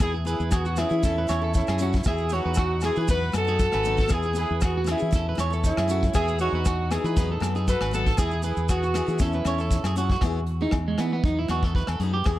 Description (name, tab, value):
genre	highlife guitar band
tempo	118 BPM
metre	4/4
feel	straight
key	E major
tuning	A4 = 440 Hz
part	warm horn section	melody	0.0-9.9 s	B3 to B4	-27 LUFS	equal	none
part	picked steel-string acoustic guitar	accompaniment	0.0-12.4 s	F#3 to A4	-33 LUFS	left 8 dB	none
part	electric guitar at the edge of break-up	arpeggios	0.0-12.4 s	G#3 to E5	-31 LUFS	right 5 dB	analog delay
part	fingered electric bass	bass	0.0-12.4 s	G#1 to E3	-27 LUFS	equal	none
part	soft brush drum kit	drums	0.0-12.4 s	hi-hat, kick drum, rim click	-27 LUFS	equal	none
part	agogo bells	percussion	0.0-12.4 s	none	-39 LUFS	left 6 dB	none
part	maracas	percussion	0.0-10.1 s	none	-40 LUFS	right 6 dB	none
room	light reverb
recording	none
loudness	-22 LUFS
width	side -14 dB against mid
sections	0.0-10.2 A section; 10.2-12.4 B section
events	clean electric guitar solo 10.2-12.4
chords	0.0 E; 1.0 A/E; 2.1 E; 3.1 B/E; 4.1 E; 5.1 A/E; 6.1 E; 7.2 B/E; 8.2 E; 9.2 A/E; 10.2 E; 11.2 B/E